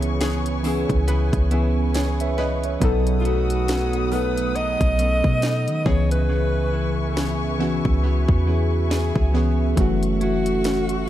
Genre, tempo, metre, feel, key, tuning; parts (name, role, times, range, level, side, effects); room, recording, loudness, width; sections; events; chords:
contemporary R&B; 69 BPM; 4/4; swing 58% on 16ths; C# minor; A4 = 441 Hz
breathy alto saxophone; melody; 0.0-11.0 s; E#4 to D#5; -25 LUFS; equal; tape echo
muted felt-like synth keys; accompaniment; 0.0-11.1 s; E3 to E5; -24 LUFS; equal; chorus, tape echo
dark studio string section; sustained chords; 0.0-11.1 s; A4 to D#6; -32 LUFS; left 4 dB
direct-recorded clean electric guitar; arpeggios; 0.0-11.1 s; B2 to G#4; -31 LUFS; right 8 dB; wide subtle chorus, tape echo
clean 808-style bass; bass; 0.0-11.1 s; F#1 to D#3; -22 LUFS; equal
trap drum kit; drums; 0.0-11.1 s; hi-hat, kick drum, snare drum; -24 LUFS; equal; tape echo
downlifter; sound effects; 0.0-2.8 s; barely audible
koto; texture; 0.2-9.0 s; G#4 to B4; -36 LUFS; left 2 dB; tape echo
little or no reverb; echo-heavy mix; -18 LUFS; side -12 dB against mid
0.0-11.1 A section
hi-hats muted 6.3-9.8
0.0 C#m7; 2.8 B7; 5.9 C#m7; 9.8 F#m7